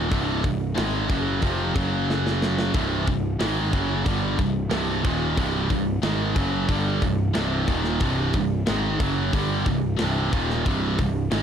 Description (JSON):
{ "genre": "heavy metal", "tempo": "91 BPM", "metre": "4/4", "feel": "straight", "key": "C phrygian", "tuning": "A4 = 441 Hz", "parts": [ { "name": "heavy high-gain guitar", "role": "riff", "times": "0.0-11.4 s", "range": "C2 to Ab3", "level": "-28 LUFS", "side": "left 11 dB", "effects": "distortion" }, { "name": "scooped high-gain guitar", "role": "riff", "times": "0.0-11.4 s", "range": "C2 to Ab3", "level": "-26 LUFS", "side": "right 9 dB", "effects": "distortion" }, { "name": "fuzz picked electric bass", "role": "bass", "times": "0.0-11.4 s", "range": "C1 to Ab1", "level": "-27 LUFS", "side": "left 1 dB", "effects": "overdrive" }, { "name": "tight metal drum kit", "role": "drums", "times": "0.1-11.4 s", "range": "hi-hat, kick drum, snare drum", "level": "-28 LUFS", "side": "equal", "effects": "none" } ], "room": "little or no reverb", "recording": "dark, warm production", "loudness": "-21 LUFS", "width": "side -8 dB against mid", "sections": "0.0-11.4 A section", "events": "drum fill 2.1-2.7", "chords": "0.0 Cm; 1.8 F#5; 2.7 Cm" }